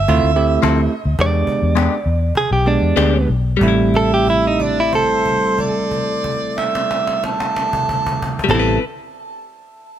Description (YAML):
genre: straight-eighth soul blues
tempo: 91-112 BPM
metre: 4/4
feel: straight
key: A minor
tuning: A4 = 441 Hz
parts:
  - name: warm harmonica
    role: second line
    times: 0.0-8.8 s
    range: A4 to E5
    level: -21 LUFS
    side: right 3 dB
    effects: overdrive, tape echo
  - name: vintage muted fingered electric bass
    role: bass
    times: 0.0-8.8 s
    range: A1 to E2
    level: -18 LUFS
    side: left 1 dB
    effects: none
  - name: bell-like tine electric piano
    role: accompaniment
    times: 0.1-8.8 s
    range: G3 to G4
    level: -21 LUFS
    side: right 4 dB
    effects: none
  - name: cajon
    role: drums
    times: 0.1-8.6 s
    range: none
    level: -26 LUFS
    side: left 1 dB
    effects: none
  - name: direct-recorded clean electric guitar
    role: stabs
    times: 0.6-8.8 s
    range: F3 to B4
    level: -21 LUFS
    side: left 5 dB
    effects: phaser
  - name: direct-recorded clean electric guitar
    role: melody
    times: 1.2-8.8 s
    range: D4 to D5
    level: -19 LUFS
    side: right 2 dB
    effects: none
room: little or no reverb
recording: none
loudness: -14 LUFS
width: side -10 dB against mid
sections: 0.0-3.6 A section; 3.6-8.9 B section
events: slowing down 0.0-3.6; held note 3.6-8.5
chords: 0.1 Dm9; 1.2 E7#9; 3.6 Am7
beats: 0.09 0.63 | 1.19 1.76 2.35 2.97 | 3.61 4.27 4.93 5.59 | 6.25 6.91 7.56 8.22